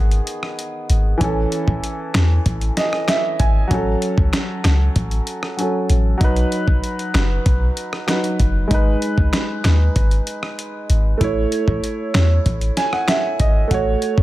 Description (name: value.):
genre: dancehall.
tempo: 96 BPM.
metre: 4/4.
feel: straight.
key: unclear.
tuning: A4 = 440 Hz.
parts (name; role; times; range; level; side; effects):
warm grand piano; accompaniment; 0.0-14.2 s; D#3 to G#5; -22 LUFS; right 2 dB; none.
clean 808-style bass; bass; 0.0-14.2 s; F#1 to E2; -17 LUFS; equal; none.
dusty soul sampler-style drum kit; drums; 0.1-14.2 s; hi-hat, kick drum, rim click, snare drum; -21 LUFS; equal; none.
room: digital ambience.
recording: none.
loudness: -16 LUFS.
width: side -16 dB against mid.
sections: 0.0-14.2 A section.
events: grand piano fill 2.5-3.7, 12.5-13.7.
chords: 0.0 G#m; 1.2 A; 3.7 F#m/A; 6.2 B; 8.7 G#m; 11.2 A; 13.7 F#m/A.